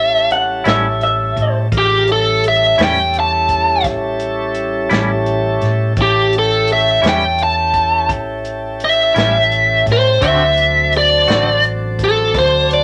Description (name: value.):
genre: slow blues.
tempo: 56 BPM (dotted quarters).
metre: 12/8.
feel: straight.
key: A mixolydian.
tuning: A4 = 439 Hz.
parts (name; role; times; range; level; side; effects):
biting lead guitar; melody; 0.0-12.8 s; G4 to A5; -15 LUFS; equal; overdrive.
tonewheel organ; sustained chords; 0.0-12.8 s; F#3 to Bb4; -24 LUFS; equal; slow rotary speaker.
fingered electric bass; bass; 0.0-12.8 s; A1 to A2; -23 LUFS; equal; none.
electric guitar through a small old amp; second line; 0.3-1.5 s; E5 to F#5; -19 LUFS; equal; none.
warm soul drum kit; drums; 0.3-12.8 s; hi-hat, kick drum, snare drum; -24 LUFS; equal; none.
clean electric guitar; accompaniment; 0.6-11.5 s; A2 to F#4; -22 LUFS; equal; tremolo.
room: moderate club reverb, RT60 0.7 s.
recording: none.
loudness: -14 LUFS.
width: mono.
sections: 0.0-12.8 A section.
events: none.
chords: 0.0 A7; 10.2 D7.